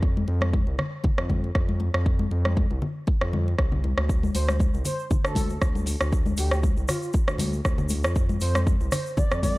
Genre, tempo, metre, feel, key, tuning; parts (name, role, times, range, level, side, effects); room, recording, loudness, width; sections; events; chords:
afro house; 118 BPM; 4/4; swing 54% on 16ths; A4 = 440 Hz
smooth gliding synth bass; bass; 0.0-9.6 s; C2 to F2; -26 LUFS; equal; transformer saturation, sidechain pumping
electronic kick drum; drums; 0.0-9.5 s; -24 LUFS; equal; studio reverb
congas; percussion; 0.2-9.6 s; -31 LUFS; left 2 dB
afro-pop drum kit; drums; 0.4-9.5 s; hi-hat, rim click; -30 LUFS; right 1 dB; studio reverb
tube shaker; percussion; 4.1-9.5 s; -40 LUFS; left 3 dB
expressive portamento lead; melody; 4.3-9.6 s; F4 to D5; -33 LUFS; right 1 dB; analog chorus, analog delay
digital ambience; dry, gritty hardware recording, cassette tape; -22 LUFS; side -20 dB against mid
0.0-9.6 A section
0.0 F5